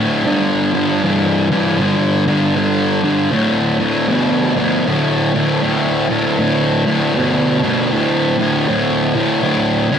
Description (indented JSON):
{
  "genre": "rock",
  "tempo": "78 BPM",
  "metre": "4/4",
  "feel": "swing 62% on 8ths",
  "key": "unclear",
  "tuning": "A4 = 441 Hz",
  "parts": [
    { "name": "thick fuzz guitar", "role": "solo", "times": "0.0-10.0 s", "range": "D2 to E3", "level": "-13 LUFS", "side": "equal", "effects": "distortion, analog delay" }
  ],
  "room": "wet lush hall reverb, RT60 1.9 s",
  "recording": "big arena sound",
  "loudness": "-13 LUFS",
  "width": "side -8 dB against mid",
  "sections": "0.0-10.0 A section",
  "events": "none",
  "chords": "0.3 G5; 3.3 D5"
}